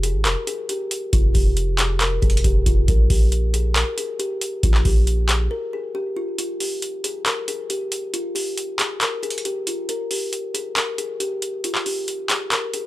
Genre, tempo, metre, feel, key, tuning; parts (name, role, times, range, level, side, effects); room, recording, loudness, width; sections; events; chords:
hip hop, trap; 137 BPM; 4/4; half-time; A4 = 436 Hz
kalimba; melody; 0.0-12.9 s; F4 to Bb4; -26 LUFS; left 2 dB
long sustained 808-style bass; bass; 0.0-5.5 s; F1 to Bb1; -20 LUFS; equal
booming analog drum machine; drums; 0.0-12.8 s; handclaps, hi-hat, kick drum; -20 LUFS; equal
little or no reverb; dry, gritty hardware recording; -19 LUFS; side -16 dB against mid
0.0-6.4 A section; 6.4-12.9 B section
break 5.5-6.4, 6.4-12.9
0.0 Fm; 2.9 Gm/Bb; 6.4 N.C.